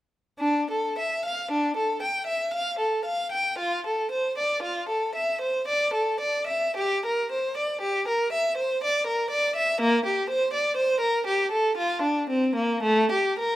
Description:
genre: classical, baroque-style suite movement for unaccompanied violin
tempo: 58 BPM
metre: 3/4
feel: uneven beats, rubato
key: D minor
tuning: A4 = 441 Hz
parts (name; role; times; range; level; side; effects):
- rich violin; solo; 0.4-13.6 s; A3 to G5; -23 LUFS; equal; none
room: light reverb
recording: close, detailed microphones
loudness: -23 LUFS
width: side -15 dB against mid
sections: 0.4-13.6 A section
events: none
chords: none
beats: | 0.39 1.51 2.54 | 3.59 4.63 5.67 | 6.75 7.81 8.82 | 9.80 10.77 11.77 | 12.83

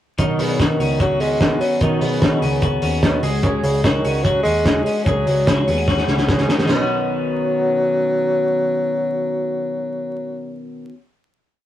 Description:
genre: jangly indie pop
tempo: 148 BPM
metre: 4/4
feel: straight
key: B major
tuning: A4 = 442 Hz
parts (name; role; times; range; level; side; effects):
- fingerpicked steel-string acoustic guitar; accompaniment; 0.2-11.0 s; B2 to G#4; -26 LUFS; right 2 dB; none
- twelve-string electric guitar; arpeggios; 0.2-11.0 s; D#3 to F#4; -24 LUFS; left 3 dB; none
- vintage muted picked electric bass; bass; 0.2-10.9 s; B1 to D#2; -24 LUFS; equal; none
- cloth-damped thuddy drum kit; drums; 0.2-6.8 s; hi-hat, kick drum, snare drum, splash cymbal; -20 LUFS; equal; none
- warm bassoon; melody; 0.4-10.7 s; C#3 to G#3; -21 LUFS; equal; none
room: moderate booth ambience, RT60 0.2 s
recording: rough rehearsal-room recording, vinyl crackle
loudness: -16 LUFS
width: side -12 dB against mid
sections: 0.2-6.7 verse; 6.7-9.9 final chord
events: drum fill 5.9-6.7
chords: 0.2 Badd9; 3.2 C#sus4; 6.7 Badd9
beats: | 0.19 0.59 1.00 1.41 | 1.81 2.22 2.62 3.03 | 3.44 3.85 4.25 4.66 | 5.07 5.47 5.88 6.29 | 6.70 7.10 7.51 7.92 | 8.32 8.73 9.14 9.54

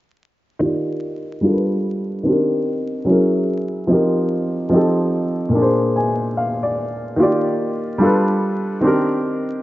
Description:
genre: hip hop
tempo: 73 BPM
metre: 4/4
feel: swing 62% on 16ths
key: unclear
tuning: A4 = 440 Hz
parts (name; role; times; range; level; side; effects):
- warm upright piano; accompaniment; 0.6-9.6 s; Bb2 to Ab5; -16 LUFS; equal; low-pass filter
room: moderate plate reverb, RT60 2.3 s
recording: vinyl crackle, nothing above 7.6 kHz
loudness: -16 LUFS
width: side -16 dB against mid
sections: 0.6-9.6 A section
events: filter sweep on upright piano 0.6-9.6; upright piano fill 5.5-7.2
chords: 0.6 Ebmaj9; 1.4 G7; 2.3 Cm7/Eb; 3.1 F#9; 3.9 F7sus4; 4.7 F7; 5.5 Bb7; 7.2 Ebmaj9; 8.0 G7; 8.8 Cm7/Eb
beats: | 0.61 1.44 2.26 3.08 | 3.90 4.72 5.54 6.37 | 7.19 8.01 8.83

